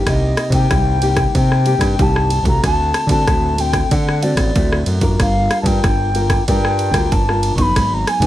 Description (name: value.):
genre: samba and choro.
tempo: 94 BPM.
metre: 4/4.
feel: straight.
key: unclear.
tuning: A4 = 440 Hz.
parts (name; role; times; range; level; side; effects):
nylon-string guitar; accompaniment; 0.0-8.3 s; G2 to Bb4; -22 LUFS; left 1 dB; none.
mellow hollow wooden flute; melody; 0.1-8.3 s; D5 to Db6; -20 LUFS; left 2 dB; none.
growling fingered electric bass; bass; 0.1-8.3 s; G1 to D3; -18 LUFS; equal; overdrive.
punchy analog drum machine; drums; 0.1-8.3 s; kick drum, ride cymbal, rim click; -18 LUFS; equal; none.
room: light reverb.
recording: none.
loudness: -13 LUFS.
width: side -13 dB against mid.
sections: 0.0-8.3 A section.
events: none.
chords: 0.1 Cm7; 2.6 D7; 5.2 Gm7; 7.8 Abm7.